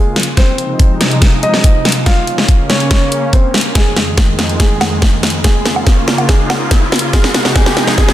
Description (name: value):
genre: heavy wobble dubstep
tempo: 142 BPM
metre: 4/4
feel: half-time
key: F minor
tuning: A4 = 440 Hz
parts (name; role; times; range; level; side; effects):
- dark baby grand piano; melody; 0.0-8.1 s; Ab3 to F5; -20 LUFS; right 1 dB; tape echo
- supersaw pad; sustained chords; 0.0-8.1 s; F2 to F4; -18 LUFS; equal; sidechain pumping, low-pass filter
- dubstep drum kit; drums; 0.2-8.1 s; hi-hat, snare drum, woodblock; -14 LUFS; equal; studio reverb
- electronic kick drum; drums; 0.4-8.1 s; none; -11 LUFS; equal; studio reverb
- riser; sound effects; 5.1-8.1 s; none; -22 LUFS; equal; none
room: light reverb, digital ambience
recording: dense, heavily limited modern master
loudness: -10 LUFS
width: side -13 dB against mid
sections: 0.0-8.1 A section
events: build-up 0.0-8.1; drum fill 0.0-8.1; filter sweep on supersaw synth 0.0-8.1; riser 5.1-8.1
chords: 0.4 Fm7/C; 2.1 Bbmadd9/Db; 3.8 Fm7; 5.4 Db6; 7.1 Fm7/C